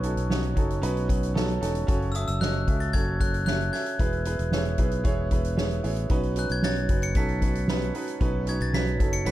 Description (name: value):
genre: piano-driven pop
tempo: 114 BPM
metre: 4/4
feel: straight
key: unclear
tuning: A4 = 442 Hz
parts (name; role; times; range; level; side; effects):
- bright upright piano; accompaniment; 0.0-9.3 s; B2 to E5; -30 LUFS; right 3 dB; none
- fingered electric bass; bass; 0.0-9.3 s; E1 to C#2; -28 LUFS; equal; none
- soft-mallet drum kit; drums; 0.0-9.3 s; hi-hat, kick drum, snare drum; -27 LUFS; equal; none
- glockenspiel with brass mallets; melody; 2.1-9.3 s; D#6 to C#7; -34 LUFS; left 3 dB; none
room: light reverb, studio reverb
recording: dark, warm production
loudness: -23 LUFS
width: side -14 dB against mid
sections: 0.0-9.3 A section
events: none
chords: 0.0 Badd9; 1.9 F#m; 4.0 E; 6.1 Badd9